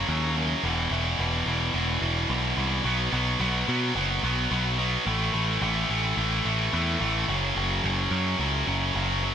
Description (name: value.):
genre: post-rock.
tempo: 108 BPM.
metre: 4/4.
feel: straight.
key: unclear.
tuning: A4 = 441 Hz.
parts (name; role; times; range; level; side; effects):
tight distorted guitar; riff; 0.0-9.3 s; E2 to B3; -25 LUFS; equal; distortion.
growling picked electric bass; bass; 0.0-9.3 s; E1 to B2; -28 LUFS; equal; overdrive.
room: light reverb, digital ambience.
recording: none.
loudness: -23 LUFS.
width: side -8 dB against mid.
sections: 0.0-9.3 A section.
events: none.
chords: 0.0 F#5; 0.6 E5; 2.9 B5; 5.1 A5; 7.3 F#5.